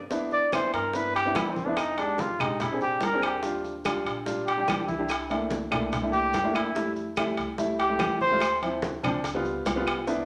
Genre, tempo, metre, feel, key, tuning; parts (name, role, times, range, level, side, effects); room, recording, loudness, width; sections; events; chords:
Afro-Cuban jazz; 144 BPM; 4/4; straight; C major; A4 = 440 Hz
dark baby grand piano; accompaniment; 0.1-10.3 s; F3 to Ab4; -32 LUFS; equal
bongos; percussion; 0.1-10.3 s; -41 LUFS; equal
congas; percussion; 0.1-10.3 s; -40 LUFS; equal
maracas; percussion; 0.1-10.3 s; -50 LUFS; equal
mellow trumpet; melody; 0.3-8.6 s; C4 to D5; -29 LUFS; equal
claves; percussion; 0.5-10.1 s; -40 LUFS; equal
timbales; percussion; 0.5-10.1 s; -35 LUFS; equal
upright bass; bass; 0.7-10.3 s; Bb1 to G2; -46 LUFS; equal
wet large studio reverb, RT60 1.2 s; -27 LUFS; mono
0.1-10.3 A section
trumpet solo 0.1-10.3
0.1 Cmaj9; 1.8 Fm7; 2.6 Bb9; 3.4 Ebmaj9; 5.1 C13; 6.8 Fmaj9; 8.4 Dm7; 9.2 Db7#11